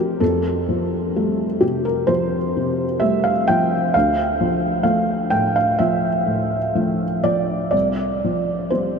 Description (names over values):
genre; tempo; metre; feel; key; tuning
neoclassical minimalist piano; 64 BPM; 4/4; rubato; D minor; A4 = 438 Hz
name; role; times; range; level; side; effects
felt-muted upright piano; solo; 0.0-9.0 s; C2 to G5; -17 LUFS; equal; none
room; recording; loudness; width
wet huge ambient reverb, RT60 8.3 s; in a vast, echoing space; -17 LUFS; side -5 dB against mid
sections
0.0-9.0 A section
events
none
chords
0.2 Fadd9; 3.9 Dm; 7.7 Csus4